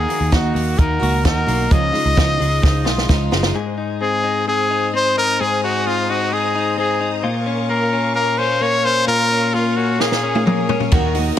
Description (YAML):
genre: jangly indie pop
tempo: 130 BPM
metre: 4/4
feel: straight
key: unclear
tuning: A4 = 440 Hz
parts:
  - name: clear trumpet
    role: melody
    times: 0.0-10.8 s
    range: F4 to Eb5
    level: -19 LUFS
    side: left 2 dB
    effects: none
  - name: picked steel-string acoustic guitar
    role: accompaniment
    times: 0.0-3.6, 10.9-11.4 s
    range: Db3 to Gb4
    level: -24 LUFS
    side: right 7 dB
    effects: none
  - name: direct-recorded clean electric guitar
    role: arpeggios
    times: 0.0-11.4 s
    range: Ab2 to Ab4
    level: -22 LUFS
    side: left 4 dB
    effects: lush chorus
  - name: vintage muted picked electric bass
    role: bass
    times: 0.0-3.5, 10.9-11.3 s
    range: Gb1 to Eb2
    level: -20 LUFS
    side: equal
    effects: none
  - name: compact cocktail drum kit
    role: drums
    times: 0.1-3.5, 10.0-11.4 s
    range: hi-hat, kick drum, ride cymbal, snare drum, toms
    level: -18 LUFS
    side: equal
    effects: none
  - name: string machine, violas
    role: sustained chords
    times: 3.6-11.4 s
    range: Bb4 to Eb6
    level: -26 LUFS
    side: equal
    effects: ensemble chorus
room: light reverb, studio reverb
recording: none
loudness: -15 LUFS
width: side -10 dB against mid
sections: 0.0-3.6 A section; 3.6-11.4 B section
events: drum fill 2.6-3.6, 10.0-10.9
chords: 0.0 Ebm; 1.7 Dbadd9; 3.6 Ab; 7.2 Bbm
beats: 0.32 0.79 1.25 | 1.71 2.17 2.63 3.09 | 3.55 4.01 4.47 4.93 | 5.39 5.86 6.32 6.78 | 7.24 7.70 8.16 8.62 | 9.08 9.54 10.01 10.47 | 10.93